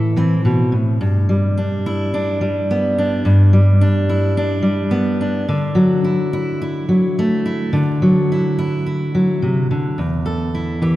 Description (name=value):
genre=folk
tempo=107 BPM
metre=4/4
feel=straight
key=unclear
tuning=A4 = 440 Hz
part: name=fingerpicked steel-string acoustic guitar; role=solo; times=0.0-11.0 s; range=E2 to A4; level=-15 LUFS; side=equal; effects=none
room=wet concert hall reverb, RT60 2.5 s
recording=recorded in a church or concert hall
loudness=-15 LUFS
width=side -15 dB against mid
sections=0.0-1.0 A section; 1.0-10.0 B section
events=none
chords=0.0 Am; 1.0 G; 5.5 Dadd9; 10.0 Em